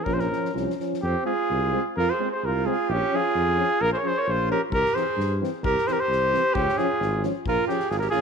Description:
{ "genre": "balkan folk, Balkan brass band", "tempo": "130 BPM", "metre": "2/4", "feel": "straight", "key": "Bb dorian sharp4", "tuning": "A4 = 439 Hz", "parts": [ { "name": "clear flugelhorn", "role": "melody", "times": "0.0-8.2 s", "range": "G4 to Db5", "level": "-24 LUFS", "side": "left 2 dB", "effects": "slapback echo" }, { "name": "dark euphonium", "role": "accompaniment", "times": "0.0-8.2 s", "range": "E3 to Ab3", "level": "-34 LUFS", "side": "right 12 dB", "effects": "none" }, { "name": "mellow French horn", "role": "accompaniment", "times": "0.0-8.2 s", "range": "C4 to Db4", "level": "-32 LUFS", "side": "left 13 dB", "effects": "none" }, { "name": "mellow tuba", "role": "bass", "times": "0.1-8.2 s", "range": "Ab1 to G2", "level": "-28 LUFS", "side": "left 1 dB", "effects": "none" }, { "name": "soft-mallet drum kit", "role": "percussion", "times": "0.1-1.0, 4.7-8.2 s", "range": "kick drum, snare drum", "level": "-35 LUFS", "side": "left 2 dB", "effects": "none" }, { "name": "warm alto saxophone", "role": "second line", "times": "1.0-8.2 s", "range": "C4 to Bb4", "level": "-28 LUFS", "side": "right 12 dB", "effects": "none" } ], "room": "moderate echo chamber reverb, RT60 1.9 s", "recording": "1960s-style stereo with parts hard left and right", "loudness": "-22 LUFS", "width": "side -6 dB against mid", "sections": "1.0-8.2 A section", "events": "speeding up 0.0-8.2", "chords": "0.1 Bbm; 1.0 Fm; 2.9 Bbm; 4.7 C; 6.6 Db; 7.5 Bbm" }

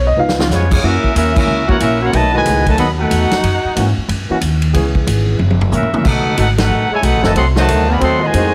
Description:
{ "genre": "jazz, big band swing", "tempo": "184 BPM", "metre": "4/4", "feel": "swing 63% on 8ths", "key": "unclear", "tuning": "A4 = 440 Hz", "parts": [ { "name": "upright bass", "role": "bass", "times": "0.0-8.5 s", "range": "F#1 to G#2", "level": "-19 LUFS", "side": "equal", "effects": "none" }, { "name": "swinging big-band drum kit", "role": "drums", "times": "0.3-8.4 s", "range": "crash cymbal, hi-hat, kick drum, ride cymbal, snare drum, toms", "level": "-22 LUFS", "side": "equal", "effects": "none" }, { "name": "mellow trombone section", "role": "sustained chords", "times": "0.4-8.5 s", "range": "D#3 to C5", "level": "-24 LUFS", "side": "equal", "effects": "none" }, { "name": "clear trumpet section", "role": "melody", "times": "0.5-8.5 s", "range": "B3 to C6", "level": "-20 LUFS", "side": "equal", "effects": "none" }, { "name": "warm trombone section", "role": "second line", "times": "0.5-8.5 s", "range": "A2 to F#4", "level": "-20 LUFS", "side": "equal", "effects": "none" } ], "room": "moderate large studio reverb, RT60 1.2 s", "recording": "heavily compressed radio sound", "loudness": "-14 LUFS", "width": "mono", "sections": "0.8-8.5 A section", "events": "drum fill 0.2-0.5, 5.4-6.0; band accent 1.3, 6.5", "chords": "0.2 C#7; 0.8 F#7; 2.1 B7; 3.4 F#7; 4.7 C#m7; 5.4 F#7; 6.0 B7; 7.4 Cdim7" }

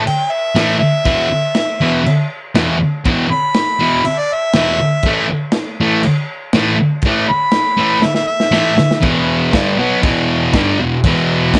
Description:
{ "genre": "garage rock duo or trio", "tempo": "120 BPM", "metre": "4/4", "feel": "straight", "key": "unclear", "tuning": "A4 = 440 Hz", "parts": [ { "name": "clear harmonica", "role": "melody", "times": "0.0-9.0 s", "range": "D5 to B5", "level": "-18 LUFS", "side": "equal", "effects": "overdrive" }, { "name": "thick fuzz guitar", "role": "riff", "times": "0.0-11.6 s", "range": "E2 to B3", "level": "-17 LUFS", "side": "equal", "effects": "distortion" }, { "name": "crunchy breakbeat drum kit", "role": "drums", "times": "0.1-11.6 s", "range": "crash cymbal, kick drum, snare drum", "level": "-22 LUFS", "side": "equal", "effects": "none" } ], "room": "light reverb", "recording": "nothing above 10.7 kHz", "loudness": "-15 LUFS", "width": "mono", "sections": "0.0-9.0 A section; 9.0-11.6 B section", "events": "harmonica solo 0.0-9.0; drum fill 8.0-9.0", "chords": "0.0 A5; 1.1 E5; 5.1 A5; 9.0 E5" }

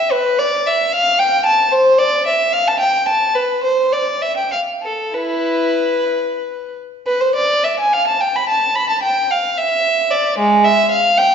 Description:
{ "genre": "classical, baroque-style suite movement for unaccompanied violin", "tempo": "62-76 BPM (dotted quarters)", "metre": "6/8", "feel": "rubato", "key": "unclear", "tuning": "A4 = 440 Hz", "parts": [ { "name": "warm violin", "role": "solo", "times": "0.0-11.3 s", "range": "G#3 to B5", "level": "-14 LUFS", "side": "equal", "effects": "none" } ], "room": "wet recital hall reverb, RT60 1.4 s", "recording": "recorded in a church or concert hall, nothing above 7.7 kHz", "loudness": "-14 LUFS", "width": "side -7 dB against mid", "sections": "0.0-7.1 A section; 7.1-11.3 B section", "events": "none", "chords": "none" }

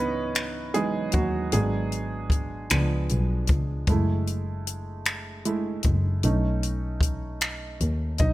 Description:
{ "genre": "slow six-eight R&B", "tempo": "51 BPM (dotted quarters)", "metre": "6/8", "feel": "straight", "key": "C# minor", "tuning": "A4 = 440 Hz", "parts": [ { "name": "clear concert grand piano", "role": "accompaniment", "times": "0.0-8.3 s", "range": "E3 to D#5", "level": "-29 LUFS", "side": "right 3 dB", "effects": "none" }, { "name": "warm double bass", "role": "bass", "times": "0.0-8.3 s", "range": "F#1 to D#2", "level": "-27 LUFS", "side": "equal", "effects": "none" }, { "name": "compact cocktail drum kit", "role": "drums", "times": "0.3-8.3 s", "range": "finger snaps, hi-hat, kick drum", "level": "-25 LUFS", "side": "equal", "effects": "none" } ], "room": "studio ambience", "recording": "none", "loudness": "-24 LUFS", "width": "side -16 dB against mid", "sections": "0.0-8.3 A section", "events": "grand piano solo 0.0-8.3", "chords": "0.0 C#m11; 1.5 G#m7b5; 2.7 C#7b9; 3.9 F#m9; 6.2 B7" }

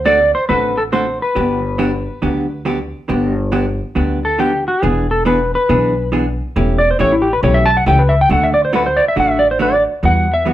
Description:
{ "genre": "country, western swing", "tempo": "138 BPM", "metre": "4/4", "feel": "swing 67% on 8ths", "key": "G major", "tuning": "A4 = 439 Hz", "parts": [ { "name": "clean lap steel guitar", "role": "melody", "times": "0.0-10.5 s", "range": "E4 to A5", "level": "-14 LUFS", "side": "equal", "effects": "none" }, { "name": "upright bass", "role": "bass", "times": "0.0-10.5 s", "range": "E1 to E2", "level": "-19 LUFS", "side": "left 1 dB", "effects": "none" }, { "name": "vintage hollow-body jazz guitar", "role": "accompaniment", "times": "0.1-10.5 s", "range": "D3 to A4", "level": "-18 LUFS", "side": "right 1 dB", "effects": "none" } ], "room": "moderate studio reverb, RT60 0.8 s", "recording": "band playing live in one room", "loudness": "-13 LUFS", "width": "side -13 dB against mid", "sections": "0.0-3.1 A section; 3.1-10.5 B section", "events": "electric slide guitar solo 3.1-10.5", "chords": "0.0 D7; 1.4 Gmaj7; 4.8 E7; 6.6 A7/E; 8.3 D; 10.0 Emadd9" }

